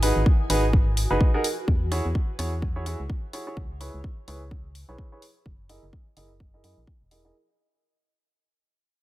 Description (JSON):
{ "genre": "piano house", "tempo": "127 BPM", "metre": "4/4", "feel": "swing 57% on 16ths", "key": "unclear", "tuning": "A4 = 440 Hz", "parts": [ { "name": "bright baby grand piano", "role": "riff", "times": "0.0-7.3 s", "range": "D#4 to D#5", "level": "-28 LUFS", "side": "right 2 dB", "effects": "sidechain pumping, low-pass filter, dub echo" }, { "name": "organ-like FM bass", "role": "bass", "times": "0.0-7.3 s", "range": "E1 to F#2", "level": "-27 LUFS", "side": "equal", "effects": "sidechain pumping" }, { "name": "electronic hi-hat", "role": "drums", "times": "0.0-7.2 s", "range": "none", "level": "-32 LUFS", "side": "left 1 dB", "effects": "studio reverb" }, { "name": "granular cloud pad", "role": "texture", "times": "0.0-7.3 s", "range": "E4 to D#6", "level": "-38 LUFS", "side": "left 2 dB", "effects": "built-in reverb, sidechain pumping" }, { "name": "electronic kick drum", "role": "drums", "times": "0.3-7.0 s", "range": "none", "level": "-23 LUFS", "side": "equal", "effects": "studio reverb" } ], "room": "digital ambience", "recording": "none", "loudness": "-22 LUFS", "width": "side -16 dB against mid", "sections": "0.0-7.3 A section", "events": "fade-out on ambient pad 0.0-7.3; fade-out 0.0-7.3; filter sweep on grand piano 0.0-7.3", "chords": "0.0 G#m7; 1.7 E69; 3.6 C#m7; 5.5 F#13" }